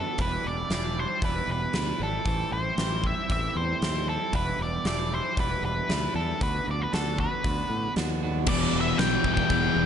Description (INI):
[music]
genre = quiet-loud alternative rock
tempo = 116 BPM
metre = 4/4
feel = straight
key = E minor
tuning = A4 = 440 Hz
[part]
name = octave-fuzz lead guitar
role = melody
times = 0.0-9.9 s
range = A4 to G5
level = -30 LUFS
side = left 1 dB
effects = distortion, analog delay
[part]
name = twelve-string electric guitar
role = arpeggios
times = 0.0-8.5 s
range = E2 to F#4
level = -34 LUFS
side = right 8 dB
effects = phaser
[part]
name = growling fingered electric bass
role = bass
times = 0.2-9.9 s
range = E1 to A2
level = -31 LUFS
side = left 1 dB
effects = overdrive
[part]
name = huge arena drum kit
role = drums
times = 0.2-9.6 s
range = crash cymbal, hi-hat, kick drum, snare drum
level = -30 LUFS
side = equal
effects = none
[part]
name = fuzz guitar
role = riff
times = 8.5-9.9 s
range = E2 to E3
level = -29 LUFS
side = left 2 dB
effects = distortion
[part]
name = overdriven semi-hollow guitar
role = riff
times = 8.5-9.9 s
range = E2 to E3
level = -30 LUFS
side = right 9 dB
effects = none
[part]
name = thick fuzz guitar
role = riff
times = 8.5-9.9 s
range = E3 to E4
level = -28 LUFS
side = left 13 dB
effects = distortion
[sound]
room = small room ambience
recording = nothing above 11.0 kHz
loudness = -24 LUFS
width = side -8 dB against mid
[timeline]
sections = 0.0-8.5 A section; 8.5-9.9 B section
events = none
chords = 0.2 Em7; 2.3 Am7; 4.3 Em7; 6.4 Bm/D; 8.5 Em